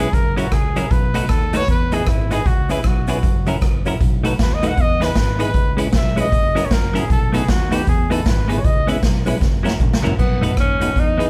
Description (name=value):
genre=ska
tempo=155 BPM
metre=4/4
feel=swing 62% on 8ths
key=unclear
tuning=A4 = 440 Hz
part: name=warm trumpet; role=melody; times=0.0-9.0 s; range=E4 to F#5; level=-26 LUFS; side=equal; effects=none
part: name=clean electric guitar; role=accompaniment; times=0.0-11.3 s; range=F#3 to B4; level=-28 LUFS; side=equal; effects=tape echo
part: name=tonewheel organ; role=stabs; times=0.0-11.3 s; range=A#3 to B4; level=-29 LUFS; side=equal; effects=overdrive, slow rotary speaker, tape echo
part: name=fingered electric bass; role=bass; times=0.0-11.3 s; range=F#1 to E2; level=-26 LUFS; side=equal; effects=none
part: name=street-band drum kit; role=drums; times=0.1-11.3 s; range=crash cymbal, hi-hat, kick drum, rim click, snare drum, toms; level=-20 LUFS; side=equal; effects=none
part: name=cabasa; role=percussion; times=0.1-11.3 s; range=none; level=-48 LUFS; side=equal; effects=none
part: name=clear tenor saxophone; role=melody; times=10.2-11.3 s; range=B3 to D#4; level=-23 LUFS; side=equal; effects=none
room=light reverb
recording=band playing live in one room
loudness=-18 LUFS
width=mono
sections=0.0-10.2 A section; 10.2-11.3 B section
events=trumpet solo 0.0-10.2; drum fill 9.4-10.2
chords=0.1 F#7; 0.9 B7; 1.7 Emaj7; 2.5 C#m7; 3.2 F#7; 4.0 B7; 4.8 Emaj7; 5.5 C#m7; 6.3 F#7; 7.1 B7; 7.9 Emaj7; 8.6 C#m7; 9.4 F#7; 10.2 B7